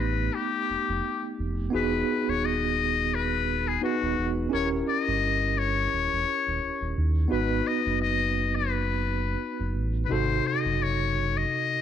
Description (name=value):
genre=R&B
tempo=86 BPM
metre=4/4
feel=swing 55% on 16ths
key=unclear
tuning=A4 = 439 Hz
part: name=trumpet with metal mute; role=melody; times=0.0-11.8 s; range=F#4 to D#5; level=-28 LUFS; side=left 9 dB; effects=none
part: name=bright tine electric piano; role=accompaniment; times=0.0-11.8 s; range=B#2 to B4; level=-29 LUFS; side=right 2 dB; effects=medium stereo tremolo
part: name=sub bass with octave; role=bass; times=0.0-11.5 s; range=D#1 to D#2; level=-29 LUFS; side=right 1 dB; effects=none
room=light reverb, studio reverb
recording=none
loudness=-24 LUFS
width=side -9 dB against mid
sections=0.0-11.8 A section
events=none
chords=0.0 Baug7; 1.7 Emaj9; 4.5 D#7b9; 7.3 G#m7; 10.1 G#7b9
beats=0.32 1.02 | 1.71 2.41 3.11 3.81 | 4.50 5.20 5.90 6.60 | 7.29 7.99 8.69 9.39 | 10.09 10.78 11.48